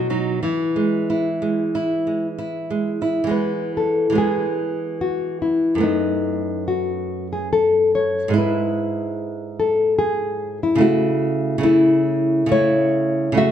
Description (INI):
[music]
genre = romantic duo for nylon-string guitar and classical guitar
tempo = 60-73 BPM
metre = 3/4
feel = rubato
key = E major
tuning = A4 = 439 Hz
[part]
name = nylon-string guitar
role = melody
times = 0.0-13.5 s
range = D#4 to E5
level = -20 LUFS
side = left 4 dB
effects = none
[part]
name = nylon-string guitar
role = accompaniment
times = 0.0-13.5 s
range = F#2 to F#4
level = -21 LUFS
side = right 3 dB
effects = none
[sound]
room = wet recital hall reverb, RT60 1.6 s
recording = dark, warm production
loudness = -18 LUFS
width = side -9 dB against mid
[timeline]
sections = 0.0-3.3 A section; 3.3-13.5 A section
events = none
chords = 0.4 E; 5.8 B7/F#; 8.3 E/G#; 10.8 A/C#